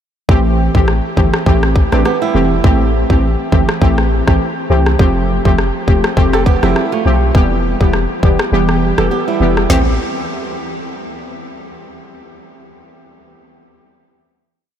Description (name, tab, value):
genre	dancehall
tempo	102 BPM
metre	4/4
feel	swing 56% on 16ths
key	A minor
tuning	A4 = 444 Hz
part	synth brass stab	accompaniment	0.3-9.9 s	E3 to G4	-16 LUFS	equal	chorus
part	warm 808-style bass	bass	0.3-10.0 s	E1 to C2	-16 LUFS	equal	none
part	island pop drum kit	drums	0.3-9.9 s	kick drum, rim click, snare drum, toms	-16 LUFS	equal	none
part	flamenco guitar	arpeggios	1.9-9.7 s	G3 to B4	-22 LUFS	right 7 dB	tape echo
room	moderate huge ambient reverb, RT60 7.1 s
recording	dreamy mix soaked in reverb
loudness	-11 LUFS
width	side -9 dB against mid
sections	0.3-9.7 verse; 9.7-12.1 final chord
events	kick muted 8.5-9.7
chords	0.3 Am7; 5.0 Fadd9; 7.3 Em; 9.7 Am7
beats	| 0.29 0.88 1.47 2.05 | 2.64 3.23 3.82 4.41 | 4.99 5.58 6.17 6.76 | 7.35 7.93 8.52 9.11 | 9.70